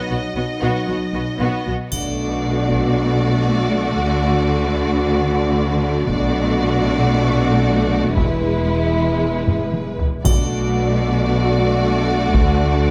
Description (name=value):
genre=cinematic, epic orchestral film score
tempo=115 BPM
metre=4/4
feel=straight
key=B dorian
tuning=A4 = 437 Hz
part: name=warm symphonic violin section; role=melody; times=0.0-12.9 s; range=B4 to D#5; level=-30 LUFS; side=equal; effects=none
part: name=warm symphonic violin section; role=second line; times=0.0-12.9 s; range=E4 to F#4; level=-28 LUFS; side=equal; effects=none
part: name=warm studio viola section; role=accompaniment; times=0.0-12.9 s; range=G#3 to B3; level=-28 LUFS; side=equal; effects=none
part: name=mellow French horn section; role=sustained chords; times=0.0-12.9 s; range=F#3 to F#4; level=-26 LUFS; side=equal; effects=none
part: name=rich chamber double bass section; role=bass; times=0.1-12.9 s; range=E1 to D2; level=-24 LUFS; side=equal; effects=none
part: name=warm studio cello section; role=bass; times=0.1-12.9 s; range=E2 to D3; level=-25 LUFS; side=equal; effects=none
part: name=taiko ensemble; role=drums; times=1.9-2.9, 6.1-12.8 s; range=none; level=-22 LUFS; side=equal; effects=none
part: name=triangle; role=percussion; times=1.9-2.9, 10.3-11.3 s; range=none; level=-32 LUFS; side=equal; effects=none
room=light reverb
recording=none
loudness=-18 LUFS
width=mono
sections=0.0-1.9 A section; 1.9-12.9 B section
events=drum fill 9.5-10.3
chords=0.0 B; 1.9 Bm7; 4.0 D; 6.1 Bm7; 8.2 E; 10.3 Bm7; 12.3 D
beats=0.36 0.88 1.40 | 1.93 2.45 2.97 3.49 | 4.01 4.53 5.05 5.57 | 6.09 6.62 7.14 7.66 | 8.18 8.70 9.22 9.74 | 10.26 10.78 11.30 11.82 | 12.34 12.86